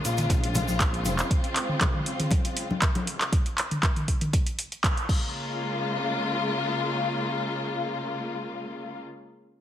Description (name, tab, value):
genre	afro house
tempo	119 BPM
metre	4/4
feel	straight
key	Bb minor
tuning	A4 = 440 Hz
part	warm studio string section	sustained chords	0.0-9.0 s	Db3 to F4	-29 LUFS	left 2 dB	sidechain pumping
part	smooth gliding synth bass	bass	0.0-1.2 s	F1 to Bb1	-29 LUFS	equal	sidechain pumping
part	afro-pop drum kit	drums	0.0-5.2 s	crash cymbal, handclaps, hi-hat, toms	-28 LUFS	equal	studio reverb
part	tube shaker	percussion	0.0-1.3 s	none	-37 LUFS	right 4 dB	none
part	electronic kick drum	drums	0.3-5.2 s	none	-25 LUFS	equal	studio reverb
part	congas	percussion	0.3-3.0 s	none	-31 LUFS	left 2 dB	none
room	light reverb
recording	heavily compressed radio sound, multiband compression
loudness	-24 LUFS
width	side -11 dB against mid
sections	0.0-5.3 A section; 5.3-9.4 B section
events	drop 0.0-5.3; band accent 4.8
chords	0.0 Db6; 5.1 Bbm7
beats	0.30 0.80 | 1.31 1.81 2.31 2.82 | 3.32 3.83 4.33 4.84 | 5.34 5.84 6.35 6.85 | 7.36 7.86 8.37 8.87